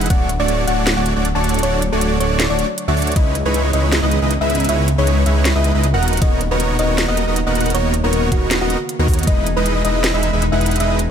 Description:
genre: future bass.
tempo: 157 BPM.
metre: 4/4.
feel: swing 54% on 16ths, half-time.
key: unclear.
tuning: A4 = 439 Hz.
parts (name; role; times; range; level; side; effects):
thumb-piano-like synth pluck; melody; 0.0-11.0 s; F#4 to A5; -23 LUFS; left 1 dB; chorus, vintage 12-bit sampler grit, sidechain pumping, dub echo.
airy breathy pad; sustained chords; 0.2-11.1 s; C#3 to D4; -28 LUFS; equal; none.
dense compressed supersaw; riff; 0.0-11.0 s; G#3 to F#5; -20 LUFS; right 1 dB; sidechain pumping.
wide detuned saw bass; bass; 0.0-11.1 s; D1 to D#2; -19 LUFS; equal; chorus, sidechain pumping.
trap drum kit; drums; 0.0-11.1 s; hi-hat, ride cymbal, snare drum; -23 LUFS; right 1 dB; small room ambience.
electronic kick drum; drums; 0.1-0.2, 3.2, 6.2-9.4 s; none; -16 LUFS; equal; small room ambience.
concert harp; arpeggios; 9.3-11.1 s; D#4 to D#5; -28 LUFS; left 6 dB; sidechain pumping, ping-pong delay.
room: digital ambience.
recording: none.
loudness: -14 LUFS.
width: side -8 dB against mid.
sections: 0.0-11.1 A section.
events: none.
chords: 0.1 Dmaj7; 3.2 C#m9; 6.0 Bmaj9/D#; 9.3 Emaj7.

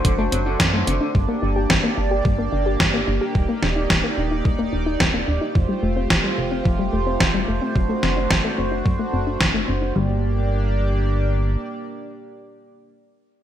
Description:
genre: synthwave.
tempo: 109 BPM.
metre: 4/4.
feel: straight.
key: G minor.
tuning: A4 = 440 Hz.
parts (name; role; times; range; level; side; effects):
chorused pulse-width pad; sustained chords; 0.0-12.9 s; A3 to D5; -25 LUFS; right 1 dB; vintage 12-bit sampler grit, sidechain pumping.
soft round pluck; arpeggios; 0.0-10.2 s; F3 to G4; -26 LUFS; left 3 dB; chorus, ping-pong delay.
electric guitar through a small old amp; riff; 0.0-1.1 s; D3 to D4; -31 LUFS; equal; lush chorus, ping-pong delay.
chorused synth bass; bass; 0.0-11.6 s; Eb1 to F#2; -23 LUFS; equal; none.
detuned 8-bit digital drum machine; drums; 0.0-9.5 s; hi-hat, snare drum; -22 LUFS; equal; gated reverb.
electronic kick drum; drums; 0.0-9.5 s; none; -22 LUFS; equal; none.
room: light reverb, digital ambience.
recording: bright 1980s-style digital production.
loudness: -18 LUFS.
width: side -10 dB against mid.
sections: 0.0-10.0 A section; 10.0-12.2 B section.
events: none.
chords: 0.0 D7/F#; 1.1 Gm; 3.4 Ebmaj7; 5.6 Fadd9; 7.8 D7/F#; 10.0 Gm.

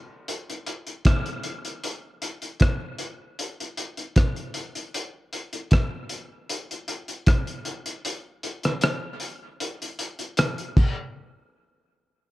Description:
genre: reggae.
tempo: 77 BPM.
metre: 4/4.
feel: straight.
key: none.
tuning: none.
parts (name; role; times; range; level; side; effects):
cloth-damped thuddy drum kit; drums; 0.3-11.0 s; crash cymbal, hi-hat, kick drum, rim click; -23 LUFS; equal; none.
room: light reverb.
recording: dark, warm production.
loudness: -25 LUFS.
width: side -18 dB against mid.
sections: 0.0-11.2 A section; 11.2-12.3 B section.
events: kick muted 8.0-11.2.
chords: none.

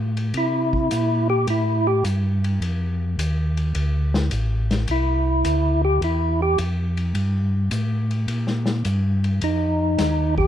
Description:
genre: soul jazz organ trio.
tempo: 106 BPM.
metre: 4/4.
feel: swing 69% on 8ths.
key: C mixolydian.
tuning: A4 = 438 Hz.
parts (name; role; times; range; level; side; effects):
mellow tonewheel organ; bass; 0.0-10.5 s; A1 to C3; -21 LUFS; equal; chorus vibrato, slow rotary speaker.
vintage drum kit; drums; 0.2-10.5 s; hi-hat, kick drum, ride cymbal, snare drum; -30 LUFS; left 2 dB; none.
percussive tonewheel organ; melody; 0.4-10.5 s; Eb4 to G4; -21 LUFS; equal; slow rotary speaker, overdrive, chorus vibrato.
room: light reverb.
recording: dark, warm production.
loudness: -19 LUFS.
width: side -10 dB against mid.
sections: 0.3-10.5 A section.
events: tonewheel organ solo 0.3-10.5.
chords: 0.3 C6; 2.6 F6; 4.9 C13; 9.4 N.C..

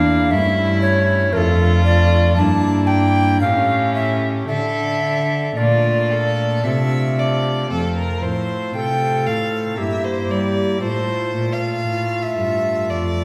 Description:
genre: classical, baroque-style sonata movement with continuo.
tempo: 58 BPM.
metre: 3/4.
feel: rubato.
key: D minor, F major from 7.7 s.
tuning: A4 = 439 Hz.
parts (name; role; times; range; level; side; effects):
tenor recorder; melody; 0.0-13.2 s; F4 to A5; -23 LUFS; equal; none.
rich violin; second line; 0.0-13.2 s; C#4 to G5; -25 LUFS; equal; none.
pipe organ, cornet; accompaniment; 0.0-13.2 s; E2 to A4; -26 LUFS; equal; none.
rich cello; bass; 0.0-13.2 s; E2 to G3; -23 LUFS; equal; none.
room: wet recital hall reverb, RT60 1.4 s.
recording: heard from further back in the room.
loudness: -18 LUFS.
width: mono.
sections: 0.0-7.7 A section; 7.7-13.2 A section.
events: none.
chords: 0.3 A7/G; 1.3 Dm/F; 2.4 Em7b5/G; 3.4 A7; 4.5 Dm; 7.7 F; 9.8 Edim/G; 10.8 F/A.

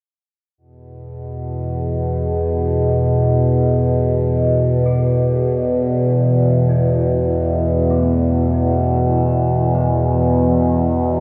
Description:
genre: dark ambient drone.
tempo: 49 BPM.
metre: 4/4.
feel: straight.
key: unclear.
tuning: A4 = 444 Hz.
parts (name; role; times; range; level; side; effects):
overtone-sweeping drone; drone; 1.1-11.2 s; E2 to B2; -17 LUFS; equal; chorus, built-in reverb.
gamelan-type bronze metallophone; arpeggios; 4.9-11.2 s; E3 to A4; -33 LUFS; equal; tape echo, shimmer reverb.
room: wet cathedral reverb, RT60 5.8 s.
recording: dark, warm production.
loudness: -17 LUFS.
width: mono.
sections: 0.6-11.2 A section.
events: fade-in on bronze metallophone 0.6-11.2.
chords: 0.6 E5.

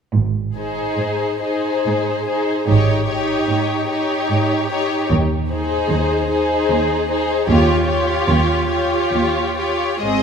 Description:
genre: classical, slow romantic movement for string orchestra.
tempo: 65-77 BPM.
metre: 3/4.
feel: rubato.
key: Ab major.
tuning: A4 = 443 Hz.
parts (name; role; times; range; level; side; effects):
warm studio cello section; bass; 0.1-10.2 s; Eb2 to Ab2; -22 LUFS; right 3 dB; none.
warm studio double bass section; bass; 0.1-10.2 s; Ab1 to Eb2; -21 LUFS; right 3 dB; none.
rich studio violin section; melody; 0.6-10.2 s; C5 to Eb5; -23 LUFS; left 5 dB; none.
rich studio violin section; second line; 0.6-10.2 s; G4 to C5; -22 LUFS; left 2 dB; none.
warm studio viola section; accompaniment; 0.6-10.2 s; Ab3 to F4; -22 LUFS; right 1 dB; none.
room: wet scoring stage reverb, RT60 2.2 s.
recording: minimal, uncompressed stereo recording.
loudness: -16 LUFS.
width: side -6 dB against mid.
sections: 0.1-10.0 A section.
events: none.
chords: 0.1 Ab; 5.1 Ab/Eb; 7.5 Eb9.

